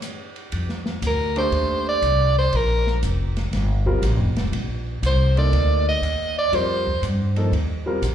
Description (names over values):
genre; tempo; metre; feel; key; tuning
modal jazz; 120 BPM; 4/4; swing 67% on 8ths; F mixolydian; A4 = 442 Hz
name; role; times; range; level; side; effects
open jazz drum kit; drums; 0.0-8.1 s; hi-hat, kick drum, ride cymbal, snare drum; -32 LUFS; equal; none
upright bass; bass; 0.5-8.1 s; Eb1 to G2; -21 LUFS; equal; none
breathy soprano saxophone; melody; 1.1-7.0 s; Bb4 to Eb5; -22 LUFS; right 1 dB; slapback echo
warm concert grand piano; accompaniment; 1.4-8.0 s; F3 to D5; -27 LUFS; equal; slapback echo
room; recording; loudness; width
small room ambience; live gig heard through the venue's PA, club reverb; -19 LUFS; side -10 dB against mid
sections
0.5-8.1 A section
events
break 0.0-0.5; soprano saxophone solo 0.5-8.1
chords
0.0 N.C.; 0.5 F9sus4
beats
0.03 | 0.53 1.03 1.53 2.03 | 2.53 3.03 3.53 4.03 | 4.53 5.03 5.53 6.03 | 6.53 7.03 7.53 8.03